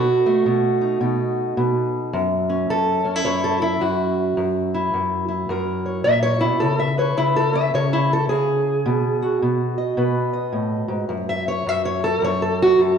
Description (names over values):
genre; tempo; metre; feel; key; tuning
acoustic country blues, solo or duo; 107 BPM; 4/4; swing 63% on 8ths; unclear; A4 = 440 Hz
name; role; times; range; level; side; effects
fingerpicked steel-string acoustic guitar; solo; 0.0-13.0 s; F#2 to E5; -18 LUFS; equal; none
room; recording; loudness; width
wet recital hall reverb, RT60 1.7 s; dark, warm production, nothing above 10.3 kHz; -18 LUFS; side -7 dB against mid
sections
0.0-13.0 A section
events
steel-string acoustic guitar solo 0.0-13.0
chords
0.0 B7; 2.1 F#7; 6.6 C#5; 8.9 B7; 11.1 N.C.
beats
0.46 1.02 1.57 | 2.13 2.69 3.25 3.81 | 4.37 4.93 5.49 6.05 | 6.61 7.17 7.73 8.29 | 8.86 9.42 9.98 10.54 | 11.10 11.66 12.22 12.78